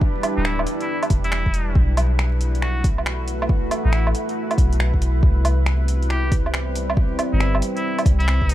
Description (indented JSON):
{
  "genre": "future garage",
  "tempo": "138 BPM",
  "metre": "4/4",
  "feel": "swing 65% on 16ths",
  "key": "unclear",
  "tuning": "A4 = 440 Hz",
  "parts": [
    { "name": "deep dark ambient pad", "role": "sustained chords", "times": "0.0-8.5 s", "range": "G3 to B4", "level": "-26 LUFS", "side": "equal", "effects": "chorus, built-in reverb, sidechain pumping" },
    { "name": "soft 808-style bass", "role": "bass", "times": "0.0-8.5 s", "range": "D1 to C2", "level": "-20 LUFS", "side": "equal", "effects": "sidechain pumping" },
    { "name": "electronic kick drum", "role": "drums", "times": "0.0-8.5 s", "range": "none", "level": "-19 LUFS", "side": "equal", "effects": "none" },
    { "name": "deep house drum kit", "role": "drums", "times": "0.2-8.5 s", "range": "finger snaps, hi-hat, woodblock", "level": "-26 LUFS", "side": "right 2 dB", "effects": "none" },
    { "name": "trumpet with straight mute", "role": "melody", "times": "0.4-8.5 s", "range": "E4 to G4", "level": "-30 LUFS", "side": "equal", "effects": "vintage 12-bit sampler grit, dub echo" }
  ],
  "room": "little or no reverb",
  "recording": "dark, warm production, vinyl crackle",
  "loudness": "-18 LUFS",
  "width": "side -14 dB against mid",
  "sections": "0.0-8.5 A section",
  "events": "none",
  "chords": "0.0 Em7; 1.8 B7sus4; 5.2 Cmaj7"
}